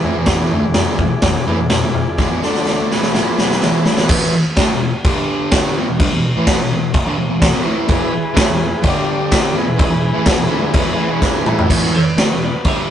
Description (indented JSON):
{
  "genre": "garage rock duo or trio",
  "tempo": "126 BPM",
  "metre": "4/4",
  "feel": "straight",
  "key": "E mixolydian",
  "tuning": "A4 = 440 Hz",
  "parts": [
    { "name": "overdriven combo organ", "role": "sustained chords", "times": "0.0-4.1, 7.9-11.7 s", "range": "D4 to D5", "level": "-22 LUFS", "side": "left 1 dB", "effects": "none" },
    { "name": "fuzz guitar", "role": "riff", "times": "0.0-12.9 s", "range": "E2 to D4", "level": "-18 LUFS", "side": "equal", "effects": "distortion" },
    { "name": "raw garage drum kit", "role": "drums", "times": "0.0-12.8 s", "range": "crash cymbal, kick drum, snare drum, toms", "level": "-16 LUFS", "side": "equal", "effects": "none" },
    { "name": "group handclap", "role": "percussion", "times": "0.8-12.3 s", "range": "none", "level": "-31 LUFS", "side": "left 2 dB", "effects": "none" },
    { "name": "electric slide guitar", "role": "melody", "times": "12.0-12.9 s", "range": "G4 to E5", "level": "-23 LUFS", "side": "right 1 dB", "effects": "none" }
  ],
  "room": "moderate studio reverb, RT60 0.6 s",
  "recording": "rough rehearsal-room recording, tube saturation, nothing above 10.6 kHz",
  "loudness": "-13 LUFS",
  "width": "side -10 dB against mid",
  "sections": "0.0-4.1 A section; 4.1-11.7 B section; 11.7-12.9 C section",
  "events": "drum fill 2.2-4.1, 11.2-11.7; electric slide guitar solo 11.7-12.9",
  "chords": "0.0 E; 2.4 D5; 2.9 E; 4.1 E5; 5.0 G5; 5.8 E; 8.8 G5; 9.6 E; 11.7 E5",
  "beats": "| 0.28 0.76 1.24 1.71 | 2.19 2.67 3.15 3.62 | 4.10 4.57 5.05 5.52 | 6.00 6.47 6.95 7.42 | 7.90 8.37 8.85 9.32 | 9.80 10.28 10.75 11.23 | 11.70 12.18 12.65"
}